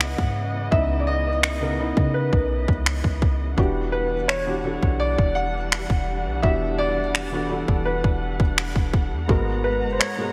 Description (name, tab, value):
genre	contemporary R&B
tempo	84 BPM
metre	4/4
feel	straight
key	unclear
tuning	A4 = 435 Hz
part	warm grand piano	melody	0.0-10.3 s	B4 to F#5	-29 LUFS	equal	subtle chorus, delay
part	felt-muted upright piano	accompaniment	0.0-10.3 s	G#2 to D#5	-31 LUFS	equal	subtle chorus
part	dark studio string section	sustained chords	0.0-10.3 s	C#3 to A#5	-34 LUFS	equal	sidechain pumping
part	warm 808-style bass	bass	0.0-10.0 s	E1 to C#3	-29 LUFS	equal	none
part	trap drum kit	drums	0.0-10.2 s	finger snaps, kick drum	-24 LUFS	equal	none
room	light reverb, studio ambience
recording	bright 1980s-style digital production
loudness	-23 LUFS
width	mono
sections	0.0-10.3 A section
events	none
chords	0.0 C#m9; 3.6 Em9; 9.3 G#m9